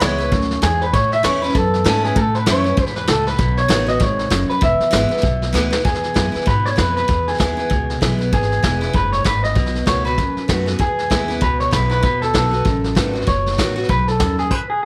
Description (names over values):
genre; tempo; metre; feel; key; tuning
rockabilly; 194 BPM; 4/4; swing 59% on 8ths; E mixolydian, E major from 5.9 s; A4 = 440 Hz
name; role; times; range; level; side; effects
electric guitar through a small old amp; melody; 0.0-14.8 s; G#4 to E5; -22 LUFS; equal; tape echo
picked steel-string acoustic guitar; accompaniment; 0.0-14.5 s; E2 to F#4; -25 LUFS; equal; none
upright bass; bass; 0.0-14.5 s; E1 to A2; -24 LUFS; equal; none
vintage brush drum kit; drums; 0.0-14.6 s; crash cymbal, hi-hat, kick drum, snare drum; -23 LUFS; equal; none
room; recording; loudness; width
light reverb, small room ambience; none; -18 LUFS; mono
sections
0.0-5.9 A section; 5.9-14.8 B section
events
drum fill 5.5-5.9, 10.6; stop 14.5-14.8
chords
0.0 E; 0.9 A; 3.4 B7; 4.6 E; 9.6 B7; 10.8 E; 12.0 B7